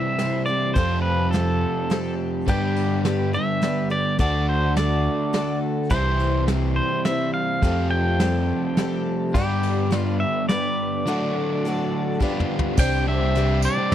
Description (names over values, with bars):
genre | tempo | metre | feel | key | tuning
folk rock and heartland rock | 105 BPM | 3/4 | straight | unclear | A4 = 440 Hz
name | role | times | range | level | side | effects
pedal steel guitar | melody | 0.0-13.9 s | G4 to G5 | -26 LUFS | equal | none
picked twelve-string acoustic guitar | accompaniment | 0.0-13.9 s | C3 to C5 | -29 LUFS | left 4 dB | none
crunchy overdriven guitar | riff | 0.0-13.9 s | F2 to G4 | -25 LUFS | right 2 dB | none
soft brush drum kit | drums | 0.2-13.9 s | crash cymbal, hi-hat, kick drum, ride cymbal, rim click, snare drum, toms | -24 LUFS | equal | none
picked electric bass | bass | 0.8-13.9 s | C2 to G2 | -23 LUFS | equal | none
dark baby grand piano | accompaniment | 12.8-13.9 s | C4 to C5 | -36 LUFS | right 8 dB | none
bright tonewheel organ | sustained chords | 12.8-13.9 s | C4 to C5 | -35 LUFS | equal | none
tambourine | percussion | 12.8-13.8 s | none | -37 LUFS | right 10 dB | none
room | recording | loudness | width
little or no reverb | dry, close 1970s-style studio recording | -20 LUFS | side -10 dB against mid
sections
0.0-12.8 A section; 12.8-13.9 B section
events
drum fill 12.2-12.8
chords
0.0 C; 0.8 Fadd9; 2.5 G; 4.2 D; 5.9 C; 7.6 Fadd9; 9.3 G; 11.1 D; 12.2 G7; 12.8 Csus2